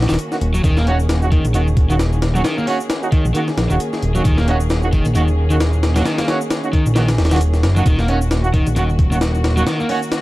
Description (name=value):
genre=breakbeat, breaks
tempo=133 BPM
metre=4/4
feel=swing 57% on 16ths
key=Eb minor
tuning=A4 = 440 Hz
part: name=dark chamber string section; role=sustained chords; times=0.0-10.2 s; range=Eb3 to Ab4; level=-26 LUFS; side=equal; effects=sidechain pumping
part: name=fat analog bass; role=bass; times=0.0-9.6 s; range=Eb1 to Bb1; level=-16 LUFS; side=equal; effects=none
part: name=breakbeat sampler-style drum kit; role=drums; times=0.0-10.2 s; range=hi-hat, kick drum, snare drum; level=-19 LUFS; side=equal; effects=none
part: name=crunchy overdriven guitar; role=riff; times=0.1-10.0 s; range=Eb3 to Db4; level=-22 LUFS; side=equal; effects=ping-pong delay
part: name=shaker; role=drums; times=0.1-10.2 s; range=none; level=-39 LUFS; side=left 1 dB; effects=overdrive
part: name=mellow brass ensemble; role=stabs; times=0.3-10.0 s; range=Bb3 to Gb4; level=-24 LUFS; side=right 3 dB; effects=ping-pong delay
room=light reverb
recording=dark, warm production, vinyl crackle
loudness=-14 LUFS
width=side -18 dB against mid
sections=0.0-10.2 A section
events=none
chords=0.0 Ebm7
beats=0.19 | 0.64 1.10 1.55 2.00 | 2.45 2.90 3.35 3.80 | 4.25 4.71 5.16 5.61 | 6.06 6.51 6.96 7.41 | 7.86 8.31 8.77 9.22 | 9.67 10.12